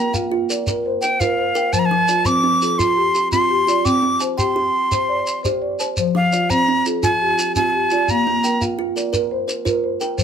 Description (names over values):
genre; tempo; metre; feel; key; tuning
southern african traditional, mbira-style interlocking cycle; 113 BPM (dotted quarters); 12/8; straight; F equiheptatonic; A4 = 444 Hz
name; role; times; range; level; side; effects
breathy bright jazz flute; melody; 0.0-8.6 s; F5 to D6-42c; -18 LUFS; equal; plate reverb
kalimba; arpeggios; 0.0-10.2 s; F3 to Ab5+43c; -24 LUFS; right 6 dB; none
marimba with soft mallets; arpeggios; 0.0-10.2 s; F3 to Ab5+43c; -22 LUFS; left 2 dB; none
shekere; percussion; 0.1-10.2 s; none; -25 LUFS; equal; none
room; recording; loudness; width
moderate small room reverb, RT60 0.5 s; none; -16 LUFS; side -8 dB against mid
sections
0.0-10.2 A section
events
none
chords
0.0 Bb; 1.7 Fm; 3.9 C5; 6.0 Fm; 8.1 Bb